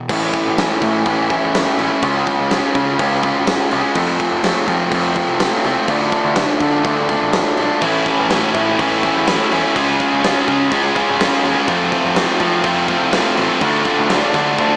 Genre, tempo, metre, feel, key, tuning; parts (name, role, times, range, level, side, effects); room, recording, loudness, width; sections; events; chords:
quiet-loud alternative rock; 124 BPM; 4/4; straight; A4 = 440 Hz
fuzz guitar; riff; 0.0-14.8 s; A2 to E#4; -19 LUFS; equal; distortion
high-gain distorted guitar; riff; 0.0-0.1, 7.8-14.8 s; A2 to E#4; -22 LUFS; equal; distortion
growling picked electric bass; bass; 0.1-14.8 s; G#1 to F3; -25 LUFS; equal; overdrive
big rock drum kit; drums; 0.1-14.7 s; crash cymbal, kick drum, snare drum; -23 LUFS; equal
light reverb; small speaker sound; -16 LUFS; mono
0.1-14.8 A section
drum fill 14.6
0.1 A; 2.0 C#; 4.0 F; 5.9 Dm; 7.8 A; 9.8 C#; 11.7 F; 13.6 Dm